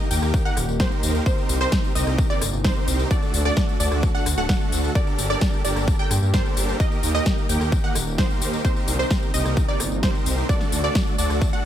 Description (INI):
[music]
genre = EDM, festival progressive house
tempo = 130 BPM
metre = 4/4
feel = straight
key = unclear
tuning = A4 = 436 Hz
[part]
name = lush unison pad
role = sustained chords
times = 0.0-11.7 s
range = C3 to G4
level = -32 LUFS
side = left 1 dB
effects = chorus, sidechain pumping
[part]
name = wide unison pluck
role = arpeggios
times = 0.0-11.7 s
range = C5 to G5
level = -30 LUFS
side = right 2 dB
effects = vintage 12-bit sampler grit, sidechain pumping, tape echo
[part]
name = dense compressed supersaw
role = riff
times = 0.0-11.7 s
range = A3 to G5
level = -27 LUFS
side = right 1 dB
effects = sidechain pumping, tape echo
[part]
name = wide detuned saw bass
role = bass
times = 0.1-11.5 s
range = D1 to G2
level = -24 LUFS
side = equal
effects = chorus, sidechain pumping
[part]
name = big-room dance drum kit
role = drums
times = 0.1-11.6 s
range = hi-hat, rim click, snare drum, tambourine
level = -28 LUFS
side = left 1 dB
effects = overdrive
[part]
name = electronic kick drum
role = drums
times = 0.3-11.5 s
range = none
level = -22 LUFS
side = equal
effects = overdrive
[sound]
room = digital ambience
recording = faint mains hum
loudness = -19 LUFS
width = side -11 dB against mid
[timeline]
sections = 0.0-11.7 A section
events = none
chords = 0.0 Eb; 1.3 Cm7; 3.1 D; 5.0 Gmadd9; 6.8 Eb; 8.6 Cm7; 10.5 D